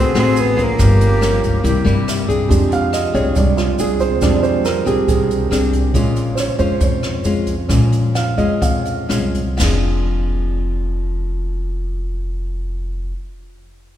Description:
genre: bossa nova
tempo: 119-140 BPM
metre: 4/4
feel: straight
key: F minor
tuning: A4 = 439 Hz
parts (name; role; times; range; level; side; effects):
- breathy tenor saxophone; melody; 0.0-2.1 s; Bb3 to C4; -20 LUFS; equal; none
- hollow concert flute; second line; 0.0-2.2 s; G4 to Ab4; -25 LUFS; right 1 dB; none
- nylon-string guitar; accompaniment; 0.0-13.2 s; F2 to Ab4; -21 LUFS; left 3 dB; none
- warm grand piano; accompaniment; 0.0-14.0 s; Db3 to F5; -20 LUFS; right 5 dB; none
- upright bass; bass; 0.0-13.1 s; F1 to G2; -19 LUFS; equal; none
- jazz brush drum kit; drums; 0.2-9.7 s; crash cymbal, hi-hat, kick drum, rim click, snare drum; -22 LUFS; equal; none
- tube shaker; percussion; 0.2-9.7 s; none; -33 LUFS; right 4 dB; none
room: moderate church reverb, RT60 3.5 s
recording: recorded in a church or concert hall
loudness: -15 LUFS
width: side -11 dB against mid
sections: 0.0-2.5 A section; 2.5-9.6 B section; 9.6-13.6 C section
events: grand piano solo 2.5-9.6; slowing down 5.9-9.6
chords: 0.0 D7; 0.8 Gm7b5; 1.6 C7; 2.5 Fm6; 5.9 Bbm7; 9.6 Fm6

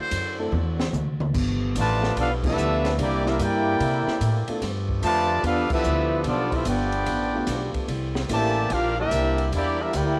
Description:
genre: jazz, big band swing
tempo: 147 BPM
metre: 4/4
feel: swing 66% on 8ths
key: G major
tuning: A4 = 440 Hz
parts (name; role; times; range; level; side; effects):
- warm saxophone section; sustained chords; 0.0-10.2 s; D3 to G4; -38 LUFS; equal; none
- upright bass; bass; 0.1-10.2 s; G1 to C3; -29 LUFS; equal; none
- open jazz drum kit; drums; 0.1-10.1 s; crash cymbal, hi-hat, kick drum, ride cymbal, snare drum, toms; -34 LUFS; equal; cassette tape
- warm upright piano; accompaniment; 0.4-4.6, 7.3-9.4 s; A3 to Bb4; -34 LUFS; equal; cassette tape, plate reverb
- clear trumpet section; melody; 1.8-10.2 s; Bb3 to A5; -27 LUFS; equal; cassette tape, plate reverb
- bright trombone section; second line; 1.8-10.2 s; D3 to G4; -30 LUFS; equal; cassette tape, plate reverb
room: light reverb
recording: home recording on cassette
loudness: -24 LUFS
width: mono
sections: 0.0-1.3 A section; 1.3-10.2 B section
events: drum fill 0.5-1.3; band accent 2.4, 5.6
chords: 0.0 D9; 1.3 G9; 3.0 C9; 4.6 G9; 7.9 C9

